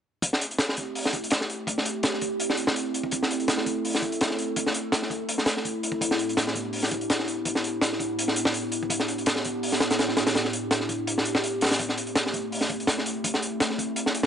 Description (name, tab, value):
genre	drum and bass, jungle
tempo	166 BPM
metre	4/4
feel	swing 54% on 16ths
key	A minor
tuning	A4 = 441 Hz
part	warbly tape-like pad	sustained chords	0.6-14.3 s	A2 to A4	-29 LUFS	right 1 dB	chorus, built-in reverb
part	crunchy breakbeat drum kit	drums	0.2-14.3 s	hi-hat, kick drum, snare drum	-25 LUFS	equal	high-pass filter on kick, high-pass filter on hats, high-pass filter on snare, high-pass filter on room
room	light reverb, small room ambience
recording	nothing above 10.7 kHz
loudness	-24 LUFS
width	side -8 dB against mid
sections	0.2-14.3 A section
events	kick drops out 11.1-11.8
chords	0.2 Am7; 6.0 Em7/A; 11.8 Am7